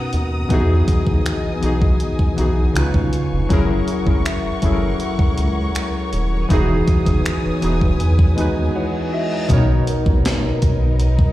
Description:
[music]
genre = contemporary R&B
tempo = 80 BPM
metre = 4/4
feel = straight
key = B major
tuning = A4 = 443 Hz
[part]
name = warm analog keys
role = accompaniment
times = 0.0-11.3 s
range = B2 to G#5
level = -20 LUFS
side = left 1 dB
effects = chorus
[part]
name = warm studio string section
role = sustained chords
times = 0.0-11.3 s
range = B3 to D#6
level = -29 LUFS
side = equal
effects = none
[part]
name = rubbery square bass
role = bass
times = 0.1-11.3 s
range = D#1 to E2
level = -19 LUFS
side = equal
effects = none
[part]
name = gated 80s digital drum machine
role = drums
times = 0.1-11.3 s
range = finger snaps, hi-hat, kick drum, snare drum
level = -18 LUFS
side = equal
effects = gated reverb, gated reverb snare
[part]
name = large celesta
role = texture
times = 4.2-11.3 s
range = A#4 to E5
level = -33 LUFS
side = right 1 dB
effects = ping-pong delay
[part]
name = reverse cymbal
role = sound effects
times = 8.6-9.5 s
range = none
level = -35 LUFS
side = left 2 dB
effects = none
[sound]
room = little or no reverb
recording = played on a big sound system in a bare room, large studio reverb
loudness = -16 LUFS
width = side -15 dB against mid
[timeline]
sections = 0.0-9.5 A section; 9.5-11.3 B section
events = synth keys fill 8.0-9.5; reverse cymbal 8.6-9.5; break 8.8-9.5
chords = 0.0 Bmaj7; 0.5 Emaj7; 2.8 C#7; 3.5 F#7; 6.5 Emaj7; 9.5 Bmaj7

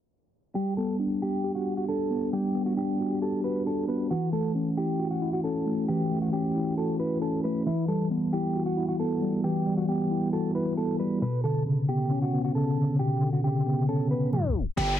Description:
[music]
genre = hip hop, trap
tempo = 135 BPM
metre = 4/4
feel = half-time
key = B minor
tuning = A4 = 439 Hz
[part]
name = clean electric guitar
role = melody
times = 0.6-15.0 s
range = E4 to B4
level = -32 LUFS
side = right 2 dB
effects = wide subtle chorus, low-pass filter
[part]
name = mellow tine electric piano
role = accompaniment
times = 0.6-14.8 s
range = B2 to G4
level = -26 LUFS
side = equal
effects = medium stereo tremolo
[part]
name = distorted 808-style bass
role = bass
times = 14.8-15.0 s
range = G1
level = -28 LUFS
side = equal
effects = distortion
[part]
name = crash cymbal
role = drums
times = 14.8-14.9 s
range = none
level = -38 LUFS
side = left 5 dB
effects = none
[part]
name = downlifter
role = sound effects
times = 14.8-15.0 s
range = none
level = -30 LUFS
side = left 2 dB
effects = none
[sound]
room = small room reverb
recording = dense, heavily limited modern master, vinyl crackle, low-pass filter, tape stop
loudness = -25 LUFS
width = side -11 dB against mid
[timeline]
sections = 0.6-14.8 A section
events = filter sweep 0.6-14.8; tape stop 14.3-14.8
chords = 0.6 Gmaj7; 4.1 F#m7; 7.7 Emadd9; 11.2 Bmadd9

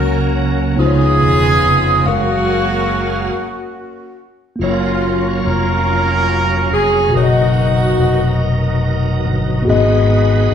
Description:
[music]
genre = gospel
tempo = 47 BPM (dotted quarters)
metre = 6/8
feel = straight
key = F# major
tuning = A4 = 440 Hz
[part]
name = warm horn section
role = melody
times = 0.0-8.8 s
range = A#3 to A#4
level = -17 LUFS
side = right 1 dB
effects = none
[part]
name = mellow tine electric piano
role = accompaniment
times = 0.0-10.5 s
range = G#2 to E#5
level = -16 LUFS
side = left 2 dB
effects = medium stereo tremolo
[part]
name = bright tonewheel organ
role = sustained chords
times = 0.0-10.5 s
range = B2 to E#5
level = -22 LUFS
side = right 3 dB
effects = slow rotary speaker, chorus vibrato
[part]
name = fingered electric bass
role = bass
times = 0.0-10.5 s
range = E1 to C#2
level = -19 LUFS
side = equal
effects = none
[sound]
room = wet large studio reverb, RT60 1.2 s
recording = band playing live in one room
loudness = -12 LUFS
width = side -8 dB against mid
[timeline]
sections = 0.0-4.6 A section; 4.6-10.5 B section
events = stop 3.3-4.6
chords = 0.0 F#/C#; 0.8 C#9; 2.1 F#maj9; 4.6 F#maj7; 7.1 Bmaj7; 9.7 G#m7

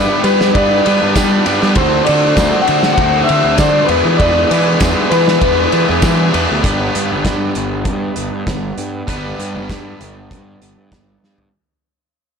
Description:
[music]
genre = indie rock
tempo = 98 BPM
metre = 4/4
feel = straight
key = unclear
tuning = A4 = 445 Hz
[part]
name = electric guitar through a small old amp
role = melody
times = 0.0-6.0 s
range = B4 to F#5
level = -16 LUFS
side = left 2 dB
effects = analog delay
[part]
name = analog string pad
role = sustained chords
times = 0.0-6.6 s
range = D3 to D5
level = -26 LUFS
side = equal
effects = none
[part]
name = crunchy overdriven guitar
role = riff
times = 0.0-11.5 s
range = E2 to C5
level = -17 LUFS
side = right 1 dB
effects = none
[part]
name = fuzz picked electric bass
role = bass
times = 0.0-11.5 s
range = G1 to G3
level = -18 LUFS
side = equal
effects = overdrive
[part]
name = loose indie drum kit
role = drums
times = 0.2-11.5 s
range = hi-hat, kick drum, ride cymbal, snare drum, toms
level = -18 LUFS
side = left 1 dB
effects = none
[part]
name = tambourine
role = percussion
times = 1.2-6.2 s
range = none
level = -30 LUFS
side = right 6 dB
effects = none
[sound]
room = light reverb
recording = blown-out, overdriven recording, overdrive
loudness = -11 LUFS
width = side -6 dB against mid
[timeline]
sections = 0.0-6.6 A section; 6.6-11.5 B section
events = fade-out 6.6-11.5; drum fill 11.2-11.5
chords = 0.0 G; 1.8 D7; 3.9 E7; 6.6 G

